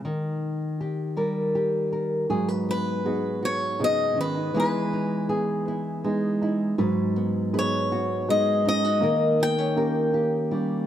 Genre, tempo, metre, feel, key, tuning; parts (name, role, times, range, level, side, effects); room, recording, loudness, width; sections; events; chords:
acoustic folk-pop ballad; 80 BPM; 3/4; straight; G# minor; A4 = 440 Hz
nylon-string guitar; accompaniment; 0.0-10.9 s; G#2 to B4; -25 LUFS; equal
felt-muted upright piano; arpeggios; 2.3-10.9 s; F#3 to G#4; -28 LUFS; right 2 dB
picked swing-style acoustic guitar; melody; 2.7-10.9 s; B4 to G5; -26 LUFS; left 3 dB
moderate plate reverb, RT60 3.2 s; heard from further back in the room; -22 LUFS; side -10 dB against mid
0.0-2.3 A section; 2.3-10.9 B section
0.0 D#; 2.3 G#m7; 4.5 Emaj7; 6.8 G#m7; 9.0 D#7